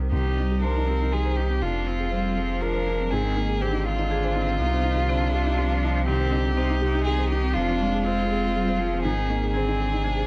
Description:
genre	neoclassical piano and strings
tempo	121 BPM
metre	3/4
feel	rubato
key	C minor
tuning	A4 = 438 Hz
part	clear viola	accompaniment	0.0-10.3 s	Eb3 to Eb4	-35 LUFS	equal	none
part	felt-muted upright piano	accompaniment	0.0-10.3 s	C2 to C5	-33 LUFS	equal	none
part	marimba with hard mallets	arpeggios	0.0-10.2 s	C4 to Ab5	-38 LUFS	equal	none
part	punchy sub bass	bass	0.0-10.3 s	F1 to C2	-28 LUFS	equal	none
part	rich violin	melody	0.1-10.3 s	F4 to Bb4	-30 LUFS	equal	none
part	rich cello	second line	0.1-10.3 s	C3 to Ab3	-34 LUFS	equal	none
room	light reverb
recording	dark, warm production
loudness	-24 LUFS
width	mono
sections	0.1-10.3 A section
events	none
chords	0.1 Cm; 1.6 Fm; 3.1 Ab; 4.6 Cm; 7.6 Fm; 9.0 Ab

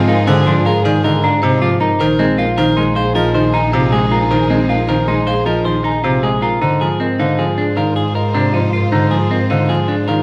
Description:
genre	classical, minimalist pattern music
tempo	156 BPM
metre	6/4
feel	straight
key	Ab lydian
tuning	A4 = 440 Hz
part	bright grand piano	accompaniment	0.0-10.2 s	C3 to Ab3	-20 LUFS	equal	none
part	warm studio violin section	sustained chords	0.0-10.2 s	Eb4 to C5	-28 LUFS	equal	none
part	celesta	arpeggios	0.0-10.2 s	Eb5 to Eb6	-25 LUFS	equal	none
part	electric guitar at the edge of break-up	arpeggios	0.0-10.2 s	C4 to C5	-22 LUFS	equal	none
part	warm double bass	bass	0.0-10.2 s	Bb1 to Ab2	-22 LUFS	equal	none
part	marimba with medium mallets	melody	0.1-10.2 s	Ab4 to Ab5	-26 LUFS	equal	none
room	moderate scoring stage reverb, RT60 1.8 s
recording	close, detailed microphones, vinyl crackle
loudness	-15 LUFS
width	mono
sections	0.0-6.6 A section; 6.6-10.2 A section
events	none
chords	0.0 Ab69; 2.0 Bb7sus4; 6.6 Ab69

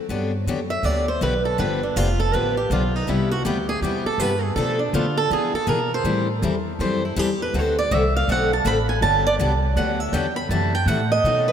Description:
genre	acoustic string swing (jazz manouche)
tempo	161 BPM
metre	4/4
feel	swing 62% on 8ths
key	G major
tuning	A4 = 440 Hz
part	picked steel-string acoustic guitar	accompaniment	0.1-11.5 s	B2 to A4	-24 LUFS	left 3 dB	none
part	upright bass	bass	0.1-11.5 s	F1 to E3	-24 LUFS	equal	none
part	picked swing-style acoustic guitar	melody	0.7-11.5 s	D4 to B5	-22 LUFS	right 3 dB	none
room	wet cathedral reverb, RT60 4.9 s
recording	in a vast, echoing space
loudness	-19 LUFS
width	side -8 dB against mid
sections	0.1-11.5 A section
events	steel-string acoustic guitar solo 0.1-11.5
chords	0.1 Gmaj7; 1.6 G7; 3.1 Cmaj7; 4.6 Bm7b5; 5.3 E7; 6.1 Am7; 7.5 D7; 9.0 Gmaj7; 10.5 F#m7b5

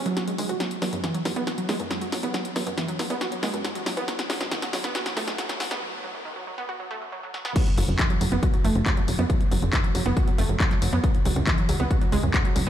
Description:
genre	uplifting trance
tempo	138 BPM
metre	4/4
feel	straight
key	unclear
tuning	A4 = 440 Hz
part	wide unison pluck	arpeggios	0.1-12.7 s	F#2 to F#4	-28 LUFS	right 2 dB	cassette tape, sidechain pumping, digital delay
part	tight sequencer bass	bass	0.1-12.7 s	F#1 to F#2	-26 LUFS	equal	sidechain pumping, high-pass filter
part	punchy analog drum machine	drums	0.1-12.7 s	crash cymbal, handclaps, hi-hat, snare drum	-30 LUFS	left 1 dB	overdrive, high-pass filter on hats, high-pass filter on snare, high-pass filter on cymbals
part	electronic kick drum	drums	7.6-12.4 s	none	-23 LUFS	left 1 dB	none
room	light reverb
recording	played on a big sound system in a bare room, large studio reverb, high-pass filter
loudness	-23 LUFS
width	side -11 dB against mid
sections	0.0-7.6 A section; 7.6-12.7 B section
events	build-up 0.0-7.6; drum fill 0.0-5.8, 7.3; filter sweep 0.0-7.6; break 5.8-7.6; drop 7.6-12.7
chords	0.0 C#5; 0.6 E5; 4.1 B5; 7.6 N.C.

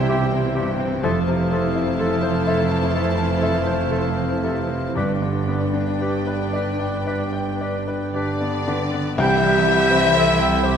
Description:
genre	classical, romantic movement for piano and orchestra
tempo	56-66 BPM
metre	4/4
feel	rubato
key	C major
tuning	A4 = 440 Hz
part	bright baby grand piano	melody	0.0-10.8 s	C2 to A5	-24 LUFS	left 1 dB	none
part	warm studio violin section	melody	0.0-10.8 s	D5 to A5	-29 LUFS	left 6 dB	none
part	warm studio violin section	second line	0.0-10.8 s	B4 to E5	-30 LUFS	left 3 dB	none
part	warm studio viola section	accompaniment	0.0-10.8 s	C4 to A4	-30 LUFS	right 2 dB	none
part	dark French horn section	sustained chords	0.0-9.6 s	C4 to C5	-30 LUFS	left 5 dB	none
part	mellow trombone section	sustained chords	0.0-9.6 s	D3 to A3	-29 LUFS	right 4 dB	none
part	warm trumpet section	stabs	0.0-9.6 s	D5 to G5	-32 LUFS	right 2 dB	none
part	dark studio double bass section	bass	0.0-10.8 s	F1 to C2	-28 LUFS	right 4 dB	none
part	warm studio cello section	bass	0.0-10.8 s	F2 to E3	-27 LUFS	right 3 dB	none
part	dark cor anglais	second line	0.1-10.8 s	D4 to E5	-32 LUFS	right 2 dB	none
part	mellow silver concert flute	second line	0.1-10.8 s	C6 to G6	-27 LUFS	left 2 dB	none
part	warm clarinet	second line	0.1-8.8 s	G4 to B4	-31 LUFS	left 2 dB	none
part	timpani	percussion	5.0-10.6 s	G2 to C3	-30 LUFS	right 1 dB	none
room	moderate concert hall reverb, RT60 2.1 s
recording	none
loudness	-18 LUFS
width	side -8 dB against mid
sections	0.0-9.2 A section; 9.2-10.8 B section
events	none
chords	0.0 C; 1.0 Fmaj7; 5.0 G; 9.2 C

